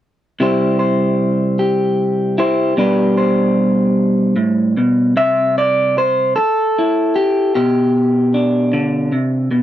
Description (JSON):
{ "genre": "folk, solo fingerstyle acoustic guitar", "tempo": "50 BPM (dotted quarters)", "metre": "6/8", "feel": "rubato", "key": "C major", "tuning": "A4 = 440 Hz", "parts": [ { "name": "electric guitar through a small old amp", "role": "solo", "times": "0.4-9.6 s", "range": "A2 to E5", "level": "-13 LUFS", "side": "equal", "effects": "none" } ], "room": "moderate booth ambience, RT60 0.2 s", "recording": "dry, close 1970s-style studio recording", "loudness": "-13 LUFS", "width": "side -12 dB against mid", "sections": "0.4-5.2 A section; 5.2-9.6 B section", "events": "none", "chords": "0.4 C; 2.8 G/B; 5.2 C; 7.6 G/B" }